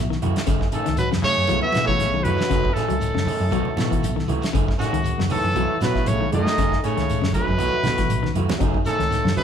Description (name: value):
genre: afrobeat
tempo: 118 BPM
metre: 4/4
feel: swing 54% on 16ths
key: F# dorian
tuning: A4 = 440 Hz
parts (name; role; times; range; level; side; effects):
- hollow-body short-scale fingered electric bass; bass; 0.0-9.3 s; F#1 to B2; -25 LUFS; equal; none
- clean electric guitar; arpeggios; 0.1-9.4 s; C#3 to F#3; -28 LUFS; left 8 dB; none
- damped 70s drum kit; drums; 0.1-9.4 s; hi-hat, kick drum, snare drum; -26 LUFS; equal; none
- electric guitar through a small old amp; stabs; 0.2-9.4 s; D#3 to G#4; -29 LUFS; right 4 dB; none
- congas; percussion; 0.2-9.4 s; none; -31 LUFS; right 2 dB; none
- shekere; percussion; 0.2-9.4 s; none; -31 LUFS; left 2 dB; none
- clear trumpet; melody; 0.7-9.4 s; F#4 to E5; -24 LUFS; right 1 dB; none
- brilliant bass trombone; second line; 0.7-9.4 s; F#2 to E3; -34 LUFS; left 2 dB; none
- trombone with bucket mute; second line; 0.7-9.4 s; C#3 to B3; -30 LUFS; right 1 dB; none
- reed electric piano; accompaniment; 8.6-9.3 s; F#3 to D#4; -31 LUFS; equal; fast tremolo
room: moderate large studio reverb, RT60 1.3 s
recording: band playing live in one room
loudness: -19 LUFS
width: side -8 dB against mid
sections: 0.0-9.4 A section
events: drum fill 7.6-8.6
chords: 0.5 F#m69; 1.5 B7sus4; 2.5 F#m69; 3.5 B7sus4; 4.5 F#m69; 5.6 B7sus4; 6.6 F#m69; 7.6 B7sus4; 8.6 F#m69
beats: | 0.48 0.99 1.50 2.00 | 2.51 3.02 3.53 4.03 | 4.54 5.05 5.56 6.06 | 6.57 7.08 7.59 8.09 | 8.60 9.11